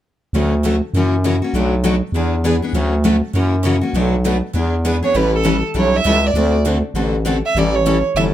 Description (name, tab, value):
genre	acoustic string swing (jazz manouche)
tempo	199 BPM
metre	4/4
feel	swing 59% on 8ths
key	A mixolydian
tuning	A4 = 440 Hz
part	picked steel-string acoustic guitar	accompaniment	0.3-8.3 s	B2 to A4	-20 LUFS	left 4 dB	none
part	picked steel-string acoustic guitar	accompaniment	0.3-8.3 s	B2 to B4	-25 LUFS	right 5 dB	none
part	growling FM bass	bass	0.3-8.3 s	G1 to F#2	-17 LUFS	equal	none
part	warm violin	melody	5.0-8.2 s	A4 to E5	-17 LUFS	right 4 dB	none
room	moderate club reverb, RT60 0.7 s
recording	none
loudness	-14 LUFS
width	side -12 dB against mid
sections	0.3-5.2 A section; 5.2-8.3 B section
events	none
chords	0.3 Dmaj7; 0.9 F#7; 1.5 Bm7; 2.1 E7; 2.7 Dmaj7; 3.3 F#7; 4.0 Bm7; 4.6 E7; 5.2 A7; 6.4 D7; 7.6 A7